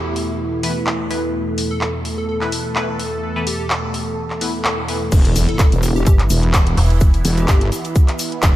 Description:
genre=bass house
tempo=127 BPM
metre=4/4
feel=swing 55% on 16ths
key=E minor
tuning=A4 = 439 Hz
part: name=plucky unison lead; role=melody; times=0.0-7.8 s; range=G4 to A4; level=-30 LUFS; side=equal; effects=tape echo
part: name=sweeping resonant pad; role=sustained chords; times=0.0-8.6 s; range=E2 to A4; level=-23 LUFS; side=equal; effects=chorus, sidechain pumping
part: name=house drum kit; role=drums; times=0.2-8.5 s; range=crash cymbal, handclaps, hi-hat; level=-24 LUFS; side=equal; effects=none
part: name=band-passed chord stab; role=stabs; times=0.6-5.0 s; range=E3 to B4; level=-28 LUFS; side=left 2 dB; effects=phaser, sidechain pumping, tape echo
part: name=wobble bass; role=bass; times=5.1-8.6 s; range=E1 to G1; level=-17 LUFS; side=equal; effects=chorus, tube saturation, sidechain pumping
part: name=electronic kick drum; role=drums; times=5.1-8.5 s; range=none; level=-13 LUFS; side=equal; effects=none
part: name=swinging big-band drum kit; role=drums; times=5.1-8.6 s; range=hi-hat, shaker, snare drum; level=-32 LUFS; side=left 2 dB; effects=sidechain pumping on hats, high-pass filter on hats, high-pass filter on snare, sidechain pumping on perc, high-pass filter on perc, high-pass filter on room
part: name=impact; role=sound effects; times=5.2-7.0 s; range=none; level=-27 LUFS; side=equal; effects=none
part: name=metallic FM bass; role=bass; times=6.1-7.2 s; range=E1 to G1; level=-15 LUFS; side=equal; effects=tube saturation, sidechain pumping
room=moderate plate reverb, RT60 2.6 s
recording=dreamy mix soaked in reverb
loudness=-15 LUFS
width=side -14 dB against mid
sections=0.0-5.1 A section; 5.1-8.6 B section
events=filter sweep on analog synth pad 0.0-5.1; drop 5.1-8.6; impact 5.1-7.0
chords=0.0 E5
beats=0.40 0.87 | 1.34 1.81 2.29 2.76 | 3.23 3.70 4.18 4.65 | 5.12 5.59 6.07 6.54 | 7.01 7.48 7.96 8.43

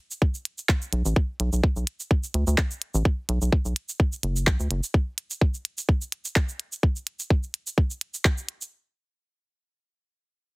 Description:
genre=minimal techno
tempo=127 BPM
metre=4/4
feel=swing 55% on 16ths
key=B minor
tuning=A4 = 440 Hz
part: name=minimal click drum kit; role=drums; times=0.1-8.7 s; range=handclaps, hi-hat, shaker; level=-27 LUFS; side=right 1 dB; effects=overdrive
part: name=electronic kick drum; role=drums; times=0.2-8.4 s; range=none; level=-21 LUFS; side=equal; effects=none
part: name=rubbery square bass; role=bass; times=0.9-4.8 s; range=F#1 to D2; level=-24 LUFS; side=equal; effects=sidechain pumping
room=little or no reverb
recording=heavily compressed radio sound, multiband compression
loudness=-23 LUFS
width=side -28 dB against mid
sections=0.0-8.7 A section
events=drop 0.0-8.7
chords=none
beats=0.22 0.69 | 1.16 1.64 2.11 2.58 | 3.05 3.52 4.00 4.47 | 4.94 5.41 5.89 6.36 | 6.83 7.30 7.78 8.25

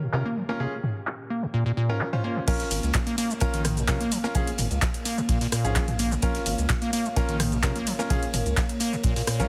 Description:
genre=acid house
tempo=128 BPM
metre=4/4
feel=straight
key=Bb dorian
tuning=A4 = 440 Hz
part: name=dark analog pad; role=sustained chords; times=0.0-9.5 s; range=Bb3 to G5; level=-36 LUFS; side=equal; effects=chorus, sidechain pumping
part: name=acid bass, square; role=riff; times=0.0-9.5 s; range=Ab2 to Bb3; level=-31 LUFS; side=equal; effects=tube saturation, sidechain pumping
part: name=punchy analog drum machine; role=drums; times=0.0-9.5 s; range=crash cymbal, handclaps, hi-hat, rim click, shaker, toms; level=-32 LUFS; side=equal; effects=overdrive, low-pass filter on perc, low-pass filter on toms, low-pass filter on snare, low-pass filter on hats, low-pass filter on cymbals
part: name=bright baby grand piano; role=stabs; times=0.1-9.5 s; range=Db4 to C5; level=-34 LUFS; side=equal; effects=dub echo
part: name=round analog bass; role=bass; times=2.5-9.5 s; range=Ab1 to Db2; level=-32 LUFS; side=equal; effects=tube saturation, sidechain pumping
part: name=electronic kick drum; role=drums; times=2.5-9.1 s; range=none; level=-29 LUFS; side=equal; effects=none
part: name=huge arena drum kit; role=drums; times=2.5-9.4 s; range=ride cymbal, snare drum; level=-43 LUFS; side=equal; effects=none
room=light reverb, digital ambience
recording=heavily compressed radio sound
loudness=-26 LUFS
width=mono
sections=0.0-2.5 A section; 2.5-9.5 B section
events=drop 2.5-9.5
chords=0.0 Bbm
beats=0.13 | 0.60 1.07 1.54 2.01 | 2.48 2.94 3.41 3.88 | 4.35 4.82 5.29 5.76 | 6.23 6.70 7.16 7.63 | 8.10 8.57 9.04

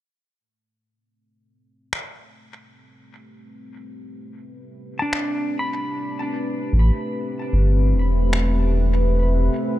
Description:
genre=ambient dub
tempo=75 BPM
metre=4/4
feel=straight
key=A minor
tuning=A4 = 439 Hz
part: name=deep dark ambient pad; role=sustained chords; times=3.1-9.8 s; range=A3 to E5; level=-27 LUFS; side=left 1 dB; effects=chorus, built-in reverb, vintage 12-bit sampler grit
part: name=electronic finger snaps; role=drums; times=1.9-8.5 s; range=none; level=-27 LUFS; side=equal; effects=dub echo
part: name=pedal steel guitar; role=arpeggios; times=5.0-8.9 s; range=D4 to B5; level=-29 LUFS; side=equal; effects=low-pass filter, tape echo
part: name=round analog bass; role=bass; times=6.7-9.5 s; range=E1 to A1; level=-17 LUFS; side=equal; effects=none
room=digital ambience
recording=dark, warm production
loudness=-19 LUFS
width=side -14 dB against mid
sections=0.3-9.8 A section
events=fade-in on ambient pad 0.3-9.8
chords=0.3 Am9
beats=| 0.33 1.13 1.93 2.73 | 3.53 4.33 5.13 5.93 | 6.73 7.53 8.33 9.13

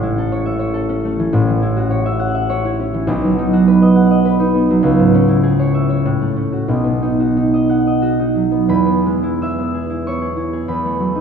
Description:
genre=classical, solo harp piece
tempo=82-106 BPM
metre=3/4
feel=rubato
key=E major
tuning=A4 = 440 Hz
part: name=concert harp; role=solo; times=0.0-11.2 s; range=A1 to E6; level=-14 LUFS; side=right 1 dB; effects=none
room=wet concert hall reverb, RT60 2.1 s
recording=recorded in a church or concert hall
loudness=-13 LUFS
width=side -7 dB against mid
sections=0.0-8.7 A section; 8.7-11.2 B section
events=none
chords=0.0 A; 1.3 F#m7/A; 3.1 B; 4.8 C#m; 6.1 F#m/A; 6.7 B; 8.7 E; 10.7 B7(no3)/E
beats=0.16 0.74 | 1.32 1.90 2.49 | 3.08 3.66 4.25 | 4.84 5.44 6.06 | 6.70 7.37 8.03 | 8.70 9.41 10.06 | 10.69

